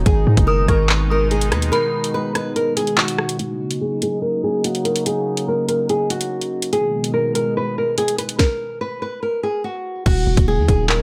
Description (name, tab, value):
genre	hip hop, drill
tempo	144 BPM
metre	4/4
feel	half-time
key	Eb minor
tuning	A4 = 440 Hz
part	flamenco guitar	melody	0.0-11.0 s	Gb4 to Cb5	-23 LUFS	equal	low-pass filter
part	sweeping resonant pad	sustained chords	0.0-11.0 s	Cb3 to Eb4	-28 LUFS	equal	chorus, low-pass filter
part	hard-hitting 808-style bass	bass	0.0-1.7, 10.1-11.0 s	Eb1 to Ab2	-20 LUFS	equal	none
part	drill drum kit	drums	0.1-11.0 s	crash cymbal, handclaps, hi-hat, kick drum, rim click, snare drum	-22 LUFS	equal	none
part	dark detuned synth bell	second line	0.5-2.1 s	Cb6 to Eb6	-30 LUFS	equal	chorus, phaser, tape echo
room	little or no reverb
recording	none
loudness	-19 LUFS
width	mono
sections	0.0-3.4 A section; 3.4-10.1 B section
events	break 1.7-3.4; filter sweep 3.4-10.1; stop 8.4-10.1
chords	0.1 Abm; 3.4 Ebm7; 6.7 Abm; 10.1 Ebm7